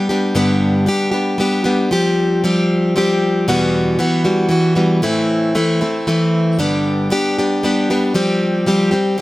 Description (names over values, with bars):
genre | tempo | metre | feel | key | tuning
rock | 115 BPM | 3/4 | straight | G major | A4 = 440 Hz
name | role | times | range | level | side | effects
picked plugged-in steel-string acoustic guitar | solo | 0.0-9.2 s | E2 to G4 | -14 LUFS | equal | none
room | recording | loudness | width
light reverb | none | -14 LUFS | side -18 dB against mid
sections
0.3-9.2 A section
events
none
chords
0.3 G; 1.9 Fsus2; 3.5 Emadd9; 5.0 Am; 6.6 G; 8.2 Fsus2